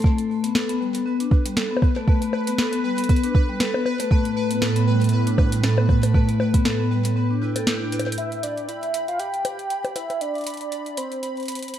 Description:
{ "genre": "IDM", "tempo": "118 BPM", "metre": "4/4", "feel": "swing 56% on 16ths", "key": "unclear", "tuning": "A4 = 441 Hz", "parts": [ { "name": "phased analog pad", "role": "sustained chords", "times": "0.0-11.8 s", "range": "A2 to G5", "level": "-25 LUFS", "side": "right 2 dB", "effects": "phaser, chorus, vintage 12-bit sampler grit" }, { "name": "vibraphone with medium mallets", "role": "arpeggios", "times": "0.0-8.2 s", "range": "G3 to A4", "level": "-24 LUFS", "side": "left 4 dB", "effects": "vintage 12-bit sampler grit, digital delay" }, { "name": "booming analog drum machine", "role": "drums", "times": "0.0-11.8 s", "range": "bongos, hi-hat, snare drum", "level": "-27 LUFS", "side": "left 1 dB", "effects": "digital delay" }, { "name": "electronic kick drum", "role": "drums", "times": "0.0-6.6 s", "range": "none", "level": "-18 LUFS", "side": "right 1 dB", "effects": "none" }, { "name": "pulsing gated texture", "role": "texture", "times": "0.4-11.8 s", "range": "B4 to B5", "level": "-34 LUFS", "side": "right 2 dB", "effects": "chorus, built-in reverb" }, { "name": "warm velvety synth lead", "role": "melody", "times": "8.2-11.7 s", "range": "C5 to G5", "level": "-26 LUFS", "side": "right 1 dB", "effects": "chorus, tremolo, digital delay" } ], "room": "light reverb, digital ambience", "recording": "dark, warm production", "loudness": "-20 LUFS", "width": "side -10 dB against mid", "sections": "0.0-8.2 A section; 8.2-11.8 B section", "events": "break 7.2-8.2; drum fill 7.9", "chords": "0.0 Gadd9 (rootless); 4.1 Asus2; 6.1 G5/A; 8.2 Cmaj9" }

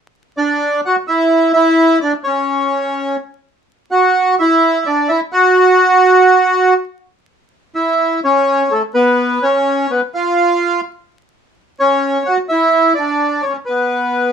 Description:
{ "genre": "tango", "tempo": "126 BPM", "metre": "4/4", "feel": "rubato", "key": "unclear", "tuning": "A4 = 438 Hz", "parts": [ { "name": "bandoneon", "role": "solo", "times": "0.4-14.3 s", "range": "A3 to F#5", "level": "-11 LUFS", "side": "right 1 dB", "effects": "none" } ], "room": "moderate studio reverb, RT60 0.6 s", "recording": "vinyl crackle", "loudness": "-12 LUFS", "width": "side -7 dB against mid", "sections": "0.0-14.3 A section", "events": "none", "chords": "0.0 N.C.; 0.6 Dadd9; 1.5 C#m; 2.5 N.C.; 4.9 Dsus2; 5.3 N.C.; 8.2 Aadd9; 9.2 Bsus2; 10.1 N.C.; 12.0 C#madd11; 13.0 Bmadd9" }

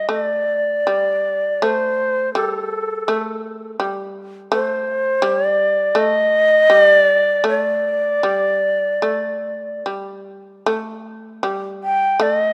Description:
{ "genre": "japanese traditional, Japanese chamber music", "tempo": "70-84 BPM", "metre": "4/4", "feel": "rubato", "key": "unclear", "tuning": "A4 = 440 Hz", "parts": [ { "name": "breathy reedy shakuhachi", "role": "melody", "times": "0.0-12.5 s", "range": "A4 to G5", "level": "-18 LUFS", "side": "equal", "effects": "none" }, { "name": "shamisen", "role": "second line", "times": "0.0-12.5 s", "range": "G3 to A3", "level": "-26 LUFS", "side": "equal", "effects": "none" } ], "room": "light reverb", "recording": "close, detailed microphones", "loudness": "-18 LUFS", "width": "mono", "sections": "0.0-10.7 A section; 10.7-12.5 B section", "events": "none", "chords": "none" }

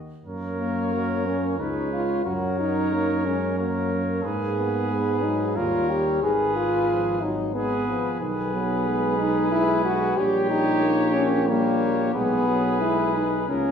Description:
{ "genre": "classical, brass quintet", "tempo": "91 BPM", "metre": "3/4", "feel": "straight", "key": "F# major, G# minor from 8.2 s", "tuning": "A4 = 440 Hz", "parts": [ { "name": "warm cornet", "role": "melody", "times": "0.3-13.7 s", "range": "A#4 to C#5", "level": "-31 LUFS", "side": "left 6 dB", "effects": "none" }, { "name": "clear trumpet", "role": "second line", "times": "0.3-13.7 s", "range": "G4 to B4", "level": "-30 LUFS", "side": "right 5 dB", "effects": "none" }, { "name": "clear euphonium", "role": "accompaniment", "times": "0.3-13.7 s", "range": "D#3 to A#3", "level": "-32 LUFS", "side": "right 2 dB", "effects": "none" }, { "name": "warm bass trombone", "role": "bass", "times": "0.3-13.7 s", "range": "G#1 to G#2", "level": "-27 LUFS", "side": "right 2 dB", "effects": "none" }, { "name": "warm French horn", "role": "accompaniment", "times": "0.6-13.7 s", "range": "A#3 to G#4", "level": "-24 LUFS", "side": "left 2 dB", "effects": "none" } ], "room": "wet recital hall reverb, RT60 1.3 s", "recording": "heard from further back in the room", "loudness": "-21 LUFS", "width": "side -7 dB against mid", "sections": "0.3-13.7 A section", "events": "none", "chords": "0.3 F#; 1.6 C#7; 2.3 F#; 4.2 G#m; 5.6 D#7; 6.2 G#m; 8.2 G#m/B; 10.2 D#7/A#; 12.2 G#m/B" }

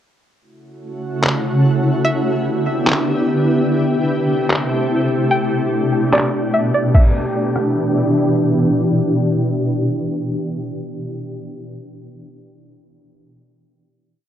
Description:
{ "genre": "hip hop, atmospheric cloud-rap", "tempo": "147 BPM", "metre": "4/4", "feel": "half-time", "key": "E minor", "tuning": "A4 = 438 Hz", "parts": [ { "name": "shimmering ambient pad", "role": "sustained chords", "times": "1.0-11.0 s", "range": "B2 to G4", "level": "-17 LUFS", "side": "equal", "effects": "chorus, built-in reverb, sidechain pumping, cassette tape" }, { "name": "trip hop sampler-style drum kit", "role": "drums", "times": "1.2-7.7 s", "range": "crash cymbal, handclaps, kick drum, rim click", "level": "-16 LUFS", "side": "equal", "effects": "none" }, { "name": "string-like resonator pluck", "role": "melody", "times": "2.0-2.4, 5.3-8.1 s", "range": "D5 to G5", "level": "-21 LUFS", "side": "equal", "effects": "chorus, cassette tape, analog delay" } ], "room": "light reverb, digital ambience", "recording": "home recording on cassette, low-pass filter", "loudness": "-15 LUFS", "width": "side -10 dB against mid", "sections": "0.4-6.9 breakdown; 6.9-10.2 final chord", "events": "filter sweep 0.4-6.9; kick muted 6.1-6.9", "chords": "0.4 F#m7; 2.0 Em7; 3.7 Am7; 5.3 Gadd9; 6.9 Em7" }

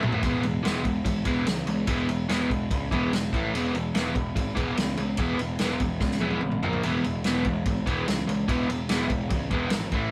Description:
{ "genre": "garage rock duo or trio", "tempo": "146 BPM", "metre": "4/4", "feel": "straight", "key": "E major", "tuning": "A4 = 441 Hz", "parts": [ { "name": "crunchy overdriven guitar", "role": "riff", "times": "0.0-10.1 s", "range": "A2 to B3", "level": "-29 LUFS", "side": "equal", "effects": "none" }, { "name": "fuzz picked electric bass", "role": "bass", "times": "0.0-10.1 s", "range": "E1 to C#2", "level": "-34 LUFS", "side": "equal", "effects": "overdrive, tube saturation" }, { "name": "vintage drum kit", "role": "drums", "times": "0.0-10.0 s", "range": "kick drum, ride cymbal, snare drum, toms", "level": "-31 LUFS", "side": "equal", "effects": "none" } ], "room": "moderate small room ambience, RT60 0.5 s", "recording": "rough rehearsal-room recording", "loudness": "-26 LUFS", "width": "mono", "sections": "0.2-10.1 A section", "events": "drum fill 0.0, 6.0-6.8", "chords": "0.2 E; 3.3 A5; 3.5 E; 6.6 A#5; 6.8 E; 9.9 A5" }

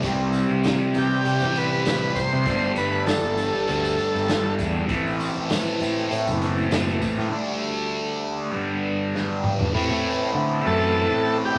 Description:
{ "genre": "psychedelic rock", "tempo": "99 BPM", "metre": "4/4", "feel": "straight", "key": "A minor", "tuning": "A4 = 441 Hz", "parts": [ { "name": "pedal harmonium", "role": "sustained chords", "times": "0.0-11.6 s", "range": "E3 to B5", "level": "-32 LUFS", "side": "equal", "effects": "none" }, { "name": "fuzz guitar", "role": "riff", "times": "0.0-11.6 s", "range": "G2 to D4", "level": "-28 LUFS", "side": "equal", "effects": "distortion, phaser" }, { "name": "fuzz picked electric bass", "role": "bass", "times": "0.0-11.6 s", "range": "F#1 to D3", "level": "-29 LUFS", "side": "equal", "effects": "overdrive" }, { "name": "raw garage drum kit", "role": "drums", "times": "0.0-9.7 s", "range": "hi-hat, kick drum, snare drum, toms", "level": "-31 LUFS", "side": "equal", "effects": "none" }, { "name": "tambourine", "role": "percussion", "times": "0.0-7.2 s", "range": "none", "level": "-44 LUFS", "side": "equal", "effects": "none" }, { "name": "combo organ", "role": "melody", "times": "1.0-4.5, 10.7-11.6 s", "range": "G4 to C5", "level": "-26 LUFS", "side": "equal", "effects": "none" } ], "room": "wet studio reverb, RT60 0.6 s", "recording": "none", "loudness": "-23 LUFS", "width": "mono", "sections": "0.0-9.7 A section; 9.7-11.6 B section", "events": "drum fill 9.1-9.7", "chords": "0.0 C; 2.5 Gsus2; 4.9 Am; 7.3 Dsus4; 8.5 Gadd9; 9.7 Amadd9" }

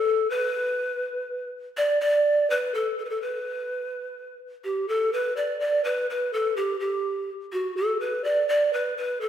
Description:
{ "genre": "andean folk", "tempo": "83 BPM (dotted quarters)", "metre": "6/8", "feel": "straight", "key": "B minor", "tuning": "A4 = 440 Hz", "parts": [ { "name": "breathy mellow large pan pipes", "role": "solo", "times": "0.0-9.3 s", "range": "F#4 to D5", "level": "-24 LUFS", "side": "equal", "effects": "none" } ], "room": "wet recital hall reverb, RT60 1.5 s", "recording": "recorded in a church or concert hall", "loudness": "-23 LUFS", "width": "side -10 dB against mid", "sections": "0.0-4.6 A section; 4.6-9.3 B section", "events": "none", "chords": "none" }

